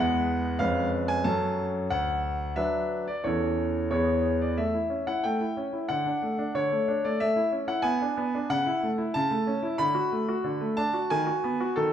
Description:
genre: classical-period piano sonatina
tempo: 92 BPM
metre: 2/4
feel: straight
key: A major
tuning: A4 = 440 Hz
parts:
  - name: bright concert grand piano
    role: solo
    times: 0.0-11.9 s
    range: D2 to B5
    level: -25 LUFS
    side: equal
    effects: none
room: wet recital hall reverb, RT60 1.6 s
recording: minimal, uncompressed stereo recording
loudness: -25 LUFS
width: side -9 dB against mid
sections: 0.0-4.6 A section; 4.6-11.9 B section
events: none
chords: 0.0 E; 0.6 C#7/E#; 1.2 F#m; 1.9 Bm/D; 3.2 A/E; 3.9 E; 4.6 A; 5.9 D; 7.2 A; 7.9 G#dim/B; 8.5 A/C#; 9.8 Bm7/D; 11.1 B7/D#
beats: | 0.58 1.24 | 1.89 2.55 | 3.23 3.90 | 4.58 5.24 | 5.90 6.56 | 7.21 7.86 | 8.51 9.16 | 9.80 10.46 | 11.11 11.76

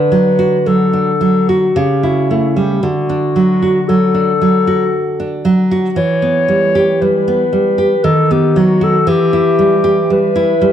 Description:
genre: romantic duo for clarinet and classical guitar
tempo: 58 BPM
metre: 3/4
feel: rubato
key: D major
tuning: A4 = 442 Hz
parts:
  - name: dark clarinet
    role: melody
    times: 0.0-10.7 s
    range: E4 to C#5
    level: -14 LUFS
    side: left 4 dB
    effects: none
  - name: nylon-string guitar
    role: accompaniment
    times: 0.0-10.7 s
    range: C#3 to G4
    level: -13 LUFS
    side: right 2 dB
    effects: none
room: moderate recital hall reverb, RT60 1.3 s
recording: dark, warm production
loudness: -11 LUFS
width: side -10 dB against mid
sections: 0.0-10.7 A section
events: none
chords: 0.0 D; 1.8 A7/C#; 2.8 D; 6.0 Em; 8.0 B/D#; 9.1 Em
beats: 0.68 1.78 | 2.84 3.89 4.94 | 5.98 7.03 8.04 | 9.07 10.11

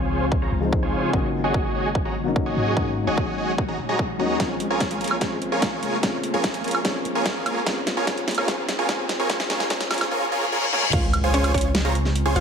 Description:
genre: future bass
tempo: 147 BPM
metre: 4/4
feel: half-time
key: Db major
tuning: A4 = 440 Hz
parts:
  - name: felt-muted upright piano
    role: accompaniment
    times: 0.0-11.0 s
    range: F3 to F4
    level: -29 LUFS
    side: left 4 dB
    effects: sidechain pumping, dub echo
  - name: ethereal airy pad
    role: sustained chords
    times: 0.0-12.4 s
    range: Db3 to F4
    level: -33 LUFS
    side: equal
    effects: ensemble chorus, built-in reverb, sidechain pumping
  - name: dense compressed supersaw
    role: riff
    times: 0.0-12.4 s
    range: F4 to Bb5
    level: -25 LUFS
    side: right 1 dB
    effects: sidechain pumping, low-pass filter
  - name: long sustained 808-style bass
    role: bass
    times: 0.0-12.4 s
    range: Eb1 to Ab2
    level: -28 LUFS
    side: equal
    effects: sidechain pumping
  - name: riser, reverse cymbal and impact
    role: sound effects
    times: 1.7-12.4 s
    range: none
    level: -32 LUFS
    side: left 1 dB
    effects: none
  - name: electronic kick drum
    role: drums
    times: 0.3-11.6 s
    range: none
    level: -26 LUFS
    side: equal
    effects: none
  - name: dubstep drum kit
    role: drums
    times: 4.4-12.4 s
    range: crash cymbal, hi-hat, snare drum, toms, woodblock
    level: -26 LUFS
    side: right 1 dB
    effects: none
  - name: mallet-like synth pluck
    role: melody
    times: 10.9-12.4 s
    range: Db4 to F5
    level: -28 LUFS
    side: equal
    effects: chorus, sidechain pumping, dub echo
room: moderate digital room reverb, RT60 1.3 s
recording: high-pass filter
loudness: -20 LUFS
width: side -6 dB against mid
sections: 0.0-10.9 A section; 10.9-12.4 B section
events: build-up 0.0-10.9; filter sweep 0.0-10.9; drum fill 4.4-10.1, 10.7; reverse cymbal 10.1-10.9; drop 10.9-12.4; impact 10.9-12.4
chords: 0.0 Dbmaj7; 1.1 Ab7sus4; 4.4 Bbm7; 7.5 Ebm7; 10.9 Dbmaj7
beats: 0.32 0.73 | 1.14 1.54 1.95 2.36 | 2.77 3.17 3.58 3.99 | 4.40 4.81 5.22 5.62 | 6.03 6.44 6.85 7.26 | 7.67 8.07 8.48 8.89 | 9.30 9.71 10.11 10.52 | 10.93 11.34 11.75 12.15

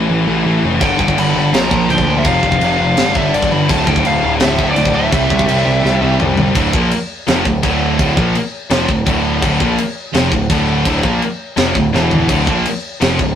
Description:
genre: heavy metal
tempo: 167 BPM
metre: 4/4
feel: straight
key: D minor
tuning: A4 = 440 Hz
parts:
  - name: heavy high-gain guitar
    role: riff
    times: 0.0-13.3 s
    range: D2 to Bb3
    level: -18 LUFS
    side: left 5 dB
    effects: distortion
  - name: sludgy distorted guitar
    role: riff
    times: 0.0-13.3 s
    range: D2 to C4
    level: -20 LUFS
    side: right 2 dB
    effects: overdrive
  - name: growling picked electric bass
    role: bass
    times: 0.0-13.4 s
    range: D1 to D2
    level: -19 LUFS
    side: equal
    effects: overdrive
  - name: high-gain lead guitar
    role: melody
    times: 0.8-6.2 s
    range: D5 to B5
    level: -18 LUFS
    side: right 1 dB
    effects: distortion
  - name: scooped high-gain guitar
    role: riff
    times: 0.8-13.3 s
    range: D2 to C4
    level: -22 LUFS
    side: right 5 dB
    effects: distortion
  - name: tight metal drum kit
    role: drums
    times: 0.8-13.3 s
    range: crash cymbal, kick drum, snare drum, toms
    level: -18 LUFS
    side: equal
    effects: none
room: light reverb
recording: rough rehearsal-room recording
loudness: -12 LUFS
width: side -9 dB against mid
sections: 0.0-6.6 A section; 6.6-13.4 B section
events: drum fill 5.8-6.6, 11.9-12.3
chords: 0.0 A5; 0.8 G; 1.5 Bb; 2.3 F5; 3.0 G5; 3.7 D5; 5.1 C; 6.6 Dm; 11.9 E5; 12.3 Dm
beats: 0.09 0.45 | 0.81 1.17 1.53 1.89 | 2.25 2.61 2.97 3.33 | 3.69 4.05 4.41 4.76 | 5.12 5.48 5.84 6.20 | 6.55 6.91 7.27 7.63 | 7.99 8.35 8.71 9.06 | 9.42 9.78 10.14 10.50 | 10.86 11.21 11.57 11.93 | 12.29 12.65 13.01

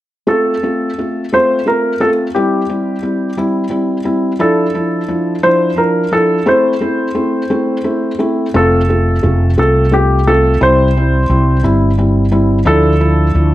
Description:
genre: pop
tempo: 58 BPM (dotted quarters)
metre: 6/8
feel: straight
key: F major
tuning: A4 = 441 Hz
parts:
  - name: warm concert grand piano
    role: melody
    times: 0.3-13.5 s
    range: G4 to C5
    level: -15 LUFS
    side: equal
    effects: none
  - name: felt-muted upright piano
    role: accompaniment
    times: 0.3-13.5 s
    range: F3 to F4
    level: -15 LUFS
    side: equal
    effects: none
  - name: mellow fretless electric bass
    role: bass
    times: 8.5-13.5 s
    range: F1 to D2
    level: -12 LUFS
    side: equal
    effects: none
room: light reverb, small room ambience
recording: none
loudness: -11 LUFS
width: side -14 dB against mid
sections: 0.3-8.5 A section; 8.5-13.5 B section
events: none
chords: 0.3 F; 2.4 C; 4.4 Dmadd9; 6.5 Am; 8.5 F; 10.6 C; 12.7 Dmadd9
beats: | 0.28 1.32 | 2.35 3.38 | 4.41 5.43 | 6.47 7.51 | 8.55 9.58 | 10.62 11.65 | 12.67

